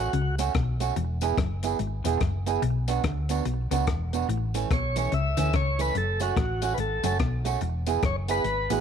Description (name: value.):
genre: ska.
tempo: 144 BPM.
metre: 4/4.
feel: swing 61% on 8ths.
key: unclear.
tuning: A4 = 438 Hz.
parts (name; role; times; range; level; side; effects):
tonewheel organ; melody; 0.0-0.4, 4.7-8.8 s; F#4 to E5; -30 LUFS; left 1 dB; slow rotary speaker.
electric guitar at the edge of break-up; accompaniment; 0.0-8.8 s; E3 to G#4; -30 LUFS; right 11 dB; none.
hollow-body short-scale fingered electric bass; bass; 0.0-8.8 s; E1 to D2; -28 LUFS; equal; none.
semi-hollow electric guitar; riff; 0.1-8.8 s; E2 to D3; -34 LUFS; left 11 dB; slapback echo.
compact cocktail drum kit; drums; 0.1-8.8 s; hi-hat, kick drum, rim click; -30 LUFS; left 2 dB; none.
tambourine; percussion; 0.4-8.8 s; none; -43 LUFS; left 18 dB; slapback echo.
room: small room ambience.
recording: 1960s-style stereo with parts hard left and right.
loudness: -24 LUFS.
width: side -8 dB against mid.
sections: 0.0-8.8 A section.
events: none.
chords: 0.0 F#m; 1.0 E; 2.6 Bm; 4.3 A; 6.0 F#m; 7.6 E.